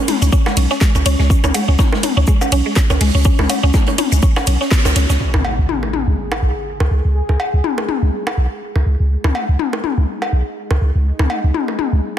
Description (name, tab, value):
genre	minimal techno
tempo	123 BPM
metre	4/4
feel	swing 56% on 16ths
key	unclear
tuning	A4 = 441 Hz
part	mallet-like synth pluck	riff	0.1-5.1 s	G#3 to C#4	-20 LUFS	equal	analog chorus, sidechain pumping, dub echo
part	house drum kit	drums	0.1-5.1 s	hi-hat, ride cymbal, shaker, snare drum	-23 LUFS	right 2 dB	none
part	loose indie drum kit	drums	0.1-5.2 s	hi-hat, shaker, snare drum	-30 LUFS	right 4 dB	sidechain pumping on hats, high-pass filter on hats, high-pass filter on snare, sidechain pumping on perc, high-pass filter on perc, high-pass filter on room
part	electronic toms, cowbell and bongos	percussion	0.1-11.9 s	none	-21 LUFS	left 3 dB	dub echo
part	punchy sub bass	bass	0.2-12.0 s	B1 to C#2	-14 LUFS	equal	sidechain pumping
part	electronic kick drum	drums	0.3-4.8 s	none	-14 LUFS	equal	none
part	impact	sound effects	5.2-7.2 s	none	-25 LUFS	equal	none
part	bubbling stepped-filter texture	texture	5.2-12.2 s	G#3 to G#4	-29 LUFS	equal	chorus, built-in reverb, sidechain pumping
room	light reverb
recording	dense, heavily limited modern master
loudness	-14 LUFS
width	side -10 dB against mid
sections	0.0-5.2 A section; 5.2-12.2 B section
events	drop 0.0-5.2; band accent 4.7; impact 5.2-7.2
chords	0.0 N.C.; 5.2 C#5